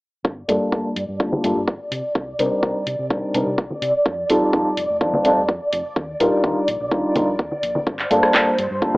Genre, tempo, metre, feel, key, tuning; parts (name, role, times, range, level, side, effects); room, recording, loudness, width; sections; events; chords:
filtered disco house; 126 BPM; 4/4; straight; G minor; A4 = 439 Hz
phased string machine; sustained chords; 0.9-9.0 s; C5 to D5; -24 LUFS; equal; ensemble chorus, phaser, sidechain pumping, low-pass filter
hollow-body short-scale fingered electric bass; bass; 0.2-8.9 s; F1 to C3; -33 LUFS; equal; tube saturation, sidechain pumping, low-pass filter
electronic kick drum; drums; 0.2-8.9 s; -22 LUFS; equal; high-pass filter on kick, high-pass filter on room
maracas and congas; percussion; 0.2-9.0 s; -23 LUFS; equal; sidechain pumping on perc, low-pass filter on perc
dark baby grand piano; accompaniment; 0.5-9.0 s; G3 to Bb4; -19 LUFS; equal; phaser, sidechain pumping, low-pass filter
house drum kit; drums; 0.5-8.7 s; handclaps, hi-hat, rim click; -23 LUFS; equal
light reverb; dry, gritty hardware recording, AM radio sound; -18 LUFS; side -22 dB against mid
0.2-9.0 A section
filter sweep 0.2-9.0
0.2 Gm7; 1.9 Cm7; 4.1 F7; 6.0 Ebmaj7; 7.9 Gm7